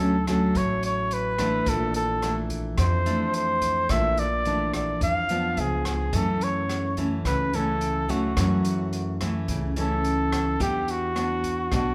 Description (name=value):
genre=bossa nova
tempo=107 BPM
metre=4/4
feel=straight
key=unclear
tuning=A4 = 440 Hz
part: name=warm flugelhorn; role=melody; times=0.0-11.9 s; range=F#4 to F5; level=-29 LUFS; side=equal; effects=none
part: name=nylon-string guitar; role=accompaniment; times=0.0-11.9 s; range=F2 to G4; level=-29 LUFS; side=equal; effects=none
part: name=upright bass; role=bass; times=0.0-11.9 s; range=A1 to F#2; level=-33 LUFS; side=equal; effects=none
part: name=open jazz drum kit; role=drums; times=0.0-11.8 s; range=hi-hat, kick drum, rim click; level=-35 LUFS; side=equal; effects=none
room=wet large studio reverb, RT60 1.3 s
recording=band playing live in one room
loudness=-25 LUFS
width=mono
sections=0.0-11.9 A section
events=none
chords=0.0 Dmaj7; 1.7 Bbmaj9#11; 5.6 C#7b9; 6.1 F#m7; 10.6 Em7